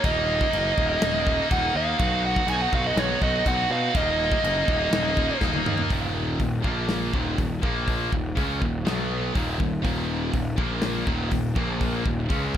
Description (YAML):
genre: heavy metal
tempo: 122 BPM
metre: 4/4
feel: straight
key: Eb minor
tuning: A4 = 440 Hz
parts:
  - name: smooth overdriven lead guitar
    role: melody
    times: 0.0-5.4 s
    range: Db5 to Ab5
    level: -26 LUFS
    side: right 2 dB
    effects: tape echo
  - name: high-gain distorted guitar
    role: riff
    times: 0.0-12.6 s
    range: Eb2 to F#4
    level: -26 LUFS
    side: equal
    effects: distortion
  - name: fuzz picked electric bass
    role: bass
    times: 0.0-12.6 s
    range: Eb1 to B2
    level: -28 LUFS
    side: equal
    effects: overdrive
  - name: modern studio drum kit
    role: drums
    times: 0.0-12.6 s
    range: crash cymbal, hi-hat, kick drum, snare drum, toms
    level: -28 LUFS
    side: equal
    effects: none
room: small room ambience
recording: none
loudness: -22 LUFS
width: side -10 dB against mid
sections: 0.0-5.9 A section; 5.9-12.6 B section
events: drum fill 5.4-5.9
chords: 0.0 Eb5; 2.0 B; 3.9 Eb5; 6.6 Bb5; 7.1 Eb5; 7.6 Bb5; 8.1 Eb5; 8.9 B5; 9.3 Eb5; 10.6 Bb5; 11.1 Eb5; 11.6 Bb5; 12.1 Eb5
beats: | 0.04 0.53 1.01 1.50 | 1.99 2.48 2.97 3.46 | 3.95 4.44 4.93 5.42 | 5.91 6.40 6.89 7.38 | 7.87 8.36 8.85 9.34 | 9.84 10.33 10.82 11.31 | 11.80 12.30